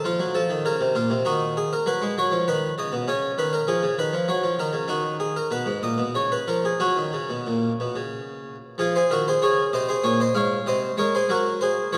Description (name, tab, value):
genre	classical, baroque-style suite movement for harpsichord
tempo	90-101 BPM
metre	3/4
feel	rubato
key	F# major, Db major from 8.8 s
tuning	A4 = 437 Hz
part	harpsichord	solo	0.0-12.0 s	G#2 to F5	-24 LUFS	equal	none
room	wet church reverb, RT60 3.8 s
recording	none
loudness	-24 LUFS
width	mono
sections	0.0-8.8 A section; 8.8-12.0 A section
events	none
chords	0.0 F5; 0.6 Bbm; 1.3 D#m; 2.5 B/D#; 3.1 C#; 4.3 F#; 4.9 N.C.; 5.5 G#m; 6.1 C#; 6.8 F#; 8.8 Db; 10.7 Ab7/C